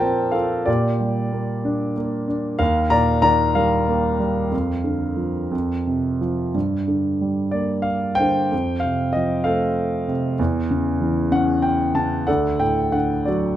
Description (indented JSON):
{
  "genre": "classical, lyrical solo piano",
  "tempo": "57-66 BPM (dotted quarters)",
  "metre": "6/8",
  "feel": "rubato",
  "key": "Bb major, G minor from 6.6 s",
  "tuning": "A4 = 440 Hz",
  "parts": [
    { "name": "warm grand piano", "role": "solo", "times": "0.0-13.6 s", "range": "D2 to Bb5", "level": "-18 LUFS", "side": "equal", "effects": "none" }
  ],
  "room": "light reverb",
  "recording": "close, detailed microphones",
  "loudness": "-18 LUFS",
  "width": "side -12 dB against mid",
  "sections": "0.0-6.6 A section; 6.6-13.6 B section",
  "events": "none",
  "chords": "0.0 Bbsus2; 0.7 Gm/Bb; 2.6 Ebadd9; 4.5 Bb/F; 5.5 F5; 6.6 Gm; 8.5 F; 10.4 Em69; 12.3 D"
}